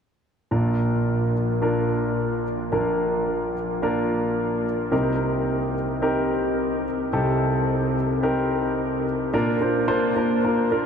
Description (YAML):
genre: pop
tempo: 109 BPM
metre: 4/4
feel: straight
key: Bb major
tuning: A4 = 442 Hz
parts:
  - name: clear concert grand piano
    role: accompaniment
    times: 0.5-10.9 s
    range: Bb1 to C5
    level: -21 LUFS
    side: equal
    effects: none
room: wet huge ambient reverb, RT60 8.2 s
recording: dreamy mix soaked in reverb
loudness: -21 LUFS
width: side -7 dB against mid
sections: 0.5-9.3 A section; 9.3-10.9 B section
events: none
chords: 0.5 Bb; 4.9 Cm7; 9.3 Bb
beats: | 0.52 1.07 1.62 2.17 | 2.72 3.27 3.82 4.38 | 4.93 5.48 6.03 6.58 | 7.13 7.68 8.23 8.78 | 9.34 9.89 10.44